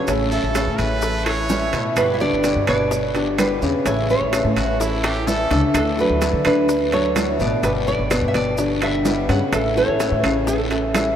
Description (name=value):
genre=latin, Cuban son and guajira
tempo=127 BPM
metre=4/4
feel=straight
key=unclear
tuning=A4 = 440 Hz
part: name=nylon-string guitar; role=melody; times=0.0-11.1 s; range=A4 to F#5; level=-23 LUFS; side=right 3 dB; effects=none
part: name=fingerpicked swing-style acoustic guitar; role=accompaniment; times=0.0-11.2 s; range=B2 to G4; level=-26 LUFS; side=left 2 dB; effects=none
part: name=dark grand piano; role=arpeggios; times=0.0-11.1 s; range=B2 to D5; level=-23 LUFS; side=left 2 dB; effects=none
part: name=upright bass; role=bass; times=0.1-11.1 s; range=G1 to D3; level=-25 LUFS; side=equal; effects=none
part: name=bongos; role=percussion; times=0.1-11.2 s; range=none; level=-32 LUFS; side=left 6 dB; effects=none
part: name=guiro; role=percussion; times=0.1-11.2 s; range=none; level=-34 LUFS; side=left 5 dB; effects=none
part: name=maracas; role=percussion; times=0.1-11.2 s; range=none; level=-37 LUFS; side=right 5 dB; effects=none
part: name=timbales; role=percussion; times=0.1-11.2 s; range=none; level=-28 LUFS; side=right 3 dB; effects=none
part: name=brilliant trumpet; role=second line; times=0.3-5.6 s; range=E4 to C#5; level=-30 LUFS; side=right 3 dB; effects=none
part: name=claves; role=percussion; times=0.6-11.2 s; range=none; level=-36 LUFS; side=right 3 dB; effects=none
room=wet cathedral reverb, RT60 7.1 s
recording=in a vast, echoing space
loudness=-17 LUFS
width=side -9 dB against mid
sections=0.0-11.2 A section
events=drum fill 5.0-5.7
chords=0.1 A; 2.0 G; 3.9 A; 5.7 D; 7.6 G; 9.5 A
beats=| 0.08 0.55 1.02 1.50 | 1.97 2.44 2.91 3.38 | 3.86 4.33 4.80 5.27 | 5.75 6.22 6.69 7.16 | 7.64 8.11 8.58 9.05 | 9.53 10.00 10.47 10.95